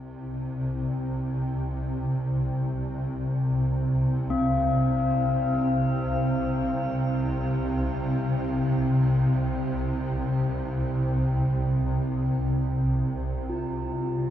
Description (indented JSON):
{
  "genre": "world meditative, free-time meditation music",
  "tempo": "free time",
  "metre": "none",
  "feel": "none",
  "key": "unclear",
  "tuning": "A4 = 440 Hz",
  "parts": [
    { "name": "swarming drone", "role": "drone", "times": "0.0-14.3 s", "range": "C2 to C3", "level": "-25 LUFS", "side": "equal", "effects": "built-in reverb" },
    { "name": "bronze singing bowl", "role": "texture", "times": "4.3-14.3 s", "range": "C4 to F4", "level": "-29 LUFS", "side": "left 2 dB", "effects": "shimmer reverb" }
  ],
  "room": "wet huge ambient reverb, RT60 6.8 s",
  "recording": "dark, warm production",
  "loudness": "-24 LUFS",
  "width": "side -11 dB against mid",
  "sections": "0.0-14.3 A section",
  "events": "none",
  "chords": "none"
}